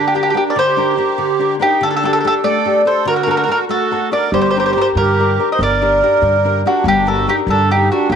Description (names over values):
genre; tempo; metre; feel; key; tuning
italian folk, Italian serenade; 96 BPM (dotted quarters); 6/8; straight; G harmonic minor; A4 = 439 Hz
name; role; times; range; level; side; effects
mandolin; melody; 0.0-8.2 s; F#4 to Eb5; -15 LUFS; equal; none
accordion; second line; 0.0-8.2 s; D4 to C5; -19 LUFS; right 10 dB; light tremolo tuning
nylon-string guitar; accompaniment; 0.0-8.2 s; D3 to Bb4; -20 LUFS; left 10 dB; none
upright bass; bass; 4.3-8.2 s; G1 to G2; -19 LUFS; right 1 dB; none
room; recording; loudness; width
moderate plate reverb, RT60 2.6 s; 1960s-style stereo with parts hard left and right; -12 LUFS; side -7 dB against mid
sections
0.0-8.2 A section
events
none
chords
0.0 Gm; 1.8 Dsus4; 3.1 D; 4.3 Gm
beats
| 0.55 1.18 | 1.80 2.43 | 3.06 3.69 | 4.32 4.96 | 5.59 6.22 | 6.85 7.48 | 8.11